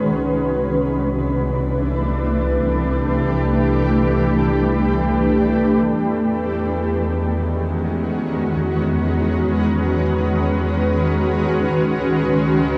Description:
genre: ambient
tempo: free time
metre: none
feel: none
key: unclear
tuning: A4 = 445 Hz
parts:
  - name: granular cloud pad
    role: sustained chords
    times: 0.0-12.8 s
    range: D#3 to B4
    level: -20 LUFS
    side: equal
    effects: built-in reverb, shimmer reverb
  - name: warm studio double bass section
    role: bass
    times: 0.0-12.8 s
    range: C2 to E2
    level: -25 LUFS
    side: equal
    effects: none
room: wet huge ambient reverb, RT60 7.8 s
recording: worn, warbling old tape, cassette tape, warbly pitch drift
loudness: -19 LUFS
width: mono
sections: 0.0-12.8 A section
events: none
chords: 0.1 Cmaj7; 6.0 Emaj7; 11.9 C#5

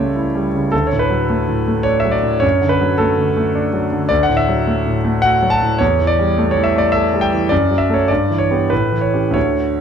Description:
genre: classical, romantic character piece for solo piano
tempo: 105 BPM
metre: 3/4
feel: rubato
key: D major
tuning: A4 = 441 Hz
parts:
  - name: clear concert grand piano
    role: solo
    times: 0.0-9.8 s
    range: C#2 to A5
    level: -14 LUFS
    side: equal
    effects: none
room: moderate recital hall reverb, RT60 1.3 s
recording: close, detailed microphones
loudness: -14 LUFS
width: side -7 dB against mid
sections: 0.0-9.8 A section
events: none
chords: 0.0 A7/C#; 0.7 D; 2.4 D/F#; 4.1 D; 5.8 A5/E; 7.5 D/F#; 8.1 Em7/G; 8.7 A9

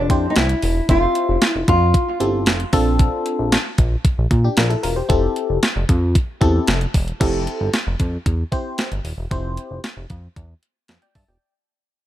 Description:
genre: early-eighties boogie funk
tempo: 114 BPM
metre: 4/4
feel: straight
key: F major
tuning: A4 = 440 Hz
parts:
  - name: nylon-string guitar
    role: melody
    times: 0.0-2.2 s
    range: D4 to F4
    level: -20 LUFS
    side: left 1 dB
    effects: tape echo
  - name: chorused synth bass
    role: bass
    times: 0.0-11.4 s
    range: Eb1 to Bb2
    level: -20 LUFS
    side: equal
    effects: none
  - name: FM electric piano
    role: accompaniment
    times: 0.1-11.5 s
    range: C4 to A5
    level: -22 LUFS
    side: left 1 dB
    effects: chorus, phaser
  - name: crisp 8-bit digital drum machine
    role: drums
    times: 0.1-11.3 s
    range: crash cymbal, hi-hat, kick drum, snare drum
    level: -19 LUFS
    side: equal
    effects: overdrive
room: little or no reverb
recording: none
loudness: -16 LUFS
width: side -13 dB against mid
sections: 0.0-7.2 A section; 7.2-11.4 B section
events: fade-out 7.2-11.4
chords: 0.0 Fmaj9; 2.7 Bbmaj9; 5.1 Fmaj9

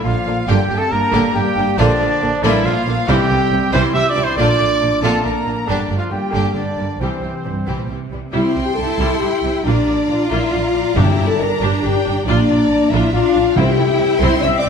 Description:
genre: cinematic, heroic adventure film score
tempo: 138 BPM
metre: 3/4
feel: straight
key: C mixolydian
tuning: A4 = 440 Hz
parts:
  - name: warm symphonic violin section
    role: melody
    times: 0.0-14.7 s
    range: C5 to E6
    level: -28 LUFS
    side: left 3 dB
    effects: none
  - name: mellow clarinet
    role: second line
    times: 0.0-7.9 s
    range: E3 to G4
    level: -26 LUFS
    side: left 2 dB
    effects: none
  - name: rich symphonic violin section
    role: second line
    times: 0.0-14.7 s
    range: G3 to C6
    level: -26 LUFS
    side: left 2 dB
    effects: none
  - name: silver concert flute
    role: second line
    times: 0.0-7.9 s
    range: C5 to E6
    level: -26 LUFS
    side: left 2 dB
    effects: none
  - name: rich studio viola section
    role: accompaniment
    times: 0.0-14.7 s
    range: D3 to G4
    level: -24 LUFS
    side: right 1 dB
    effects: none
  - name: dark French horn section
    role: sustained chords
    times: 0.0-14.7 s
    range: C3 to E5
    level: -20 LUFS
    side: left 4 dB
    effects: none
  - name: warm trumpet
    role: stabs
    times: 0.0-7.9 s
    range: C4 to E5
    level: -21 LUFS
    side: right 4 dB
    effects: none
  - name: dark studio double bass section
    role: bass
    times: 0.0-14.7 s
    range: G1 to C2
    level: -21 LUFS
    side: right 3 dB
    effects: none
  - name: rich symphonic cello section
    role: bass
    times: 0.1-14.7 s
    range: G2 to F4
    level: -23 LUFS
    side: right 3 dB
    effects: none
  - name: timpani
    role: percussion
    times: 3.1-3.7, 11.0-14.2 s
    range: G2 to C3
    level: -22 LUFS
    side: left 2 dB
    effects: none
room: wet scoring stage reverb, RT60 1.6 s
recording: none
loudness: -14 LUFS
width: side -6 dB against mid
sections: 0.0-8.3 A section; 8.3-14.7 B section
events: none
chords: 0.5 Gm; 1.8 Bb; 3.1 C; 4.4 Bb; 5.7 Gm; 7.0 C; 9.7 Bb; 11.0 Gm; 12.3 Bb; 13.6 C

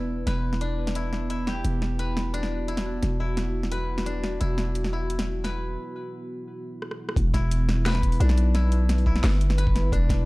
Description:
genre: half-time drum and bass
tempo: 174 BPM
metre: 4/4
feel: half-time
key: E minor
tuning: A4 = 440 Hz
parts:
  - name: dark analog pad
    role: sustained chords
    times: 0.0-10.3 s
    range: B3 to B4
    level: -33 LUFS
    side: right 1 dB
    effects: chorus, sidechain pumping
  - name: koto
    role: arpeggios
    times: 0.0-10.3 s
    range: D4 to B4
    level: -34 LUFS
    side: left 3 dB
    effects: vintage 12-bit sampler grit, analog delay
  - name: growling 808-style bass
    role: bass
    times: 0.0-10.3 s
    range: E1 to B1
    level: -24 LUFS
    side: equal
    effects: none
  - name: drum and bass drum kit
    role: drums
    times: 0.3-10.2 s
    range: hi-hat, rim click, snare drum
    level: -32 LUFS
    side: equal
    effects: overdrive, studio ambience
  - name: electronic kick drum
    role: drums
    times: 7.2-10.2 s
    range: none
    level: -24 LUFS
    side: equal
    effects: studio ambience
room: little or no reverb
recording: dry, gritty hardware recording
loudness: -23 LUFS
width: side -22 dB against mid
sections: 0.0-7.2 A section; 7.2-10.3 B section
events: break 5.8-7.2; drum fill 6.8-7.2; drop 7.2-10.3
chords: 0.0 E5

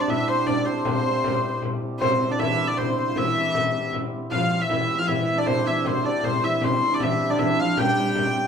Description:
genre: medieval dance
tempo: 156 BPM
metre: 3/4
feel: straight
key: C major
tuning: A4 = 439 Hz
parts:
  - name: clear hurdy-gurdy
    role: melody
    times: 0.0-8.5 s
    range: C5 to G5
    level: -24 LUFS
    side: equal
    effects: none
  - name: hammered dulcimer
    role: second line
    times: 0.0-8.5 s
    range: C4 to G4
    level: -27 LUFS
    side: right 3 dB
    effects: none
  - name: hand-pumped harmonium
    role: drone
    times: 0.0-8.5 s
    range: C3 to G3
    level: -35 LUFS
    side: left 2 dB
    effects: none
  - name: frame drum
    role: percussion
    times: 0.1-8.3 s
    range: none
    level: -27 LUFS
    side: left 2 dB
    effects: none
  - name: rich viola da gamba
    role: second line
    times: 2.0-8.5 s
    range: C3 to G3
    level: -30 LUFS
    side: left 3 dB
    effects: none
room: wet studio reverb, RT60 0.8 s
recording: band playing live in one room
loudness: -20 LUFS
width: side -7 dB against mid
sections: 0.0-2.0 A section; 2.0-8.5 A section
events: none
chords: none

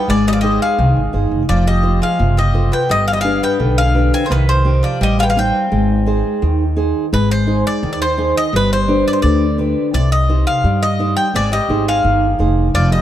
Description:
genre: greek folk, Greek bouzouki band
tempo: 85 BPM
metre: 2/4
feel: straight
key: unclear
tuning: A4 = 441 Hz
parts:
  - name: Greek bouzouki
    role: melody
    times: 0.0-13.0 s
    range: B4 to Ab5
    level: -18 LUFS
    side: left 1 dB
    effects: none
  - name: Greek bouzouki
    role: second line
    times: 0.0-6.7, 11.4-13.0 s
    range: Eb3 to C4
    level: -24 LUFS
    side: left 2 dB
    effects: none
  - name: fingerpicked steel-string acoustic guitar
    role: accompaniment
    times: 0.0-13.0 s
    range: C3 to C5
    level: -18 LUFS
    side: right 1 dB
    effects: none
  - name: upright bass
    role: bass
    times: 0.1-13.0 s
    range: F1 to G2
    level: -17 LUFS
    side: equal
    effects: none
room: light reverb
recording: dark, warm production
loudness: -13 LUFS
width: side -11 dB against mid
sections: 0.0-7.1 A section; 7.1-13.0 A section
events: none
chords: 0.1 Ab; 1.5 F; 2.9 G; 4.3 Cm; 5.7 Ab; 8.5 G; 9.9 Cm; 11.3 Ab

